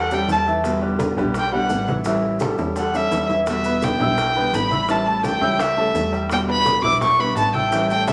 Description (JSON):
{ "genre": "latin, Cuban son and guajira", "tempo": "170 BPM", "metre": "4/4", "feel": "straight", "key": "unclear", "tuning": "A4 = 439 Hz", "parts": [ { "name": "dark violin", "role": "melody", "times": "0.0-8.1 s", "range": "E5 to D6", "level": "-23 LUFS", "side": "equal", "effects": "none" }, { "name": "clear baby grand piano", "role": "arpeggios", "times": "0.0-8.1 s", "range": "E3 to E6", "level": "-27 LUFS", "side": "equal", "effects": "none" }, { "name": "plucky analog bass", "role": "bass", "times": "0.0-8.1 s", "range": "A1 to E2", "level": "-31 LUFS", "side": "equal", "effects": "none" }, { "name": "nylon-string guitar", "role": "accompaniment", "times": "0.1-8.1 s", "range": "B2 to E4", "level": "-28 LUFS", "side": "equal", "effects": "none" }, { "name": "bongos", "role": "percussion", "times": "0.1-8.1 s", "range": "none", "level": "-32 LUFS", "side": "equal", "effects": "none" }, { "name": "congas", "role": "percussion", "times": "0.1-8.1 s", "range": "none", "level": "-33 LUFS", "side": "equal", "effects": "none" }, { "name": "maracas", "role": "percussion", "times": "0.1-8.1 s", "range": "none", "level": "-44 LUFS", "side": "equal", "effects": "none" } ], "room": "wet large studio reverb, RT60 1.2 s", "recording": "none", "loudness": "-20 LUFS", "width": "mono", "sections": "0.0-3.5 A section; 3.5-8.1 B section", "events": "violin solo 0.0-3.5; drum fill 2.8-3.5", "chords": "0.0 A7; 0.6 Em7; 2.1 A7; 3.5 Em7; 4.9 A7; 6.3 Em7" }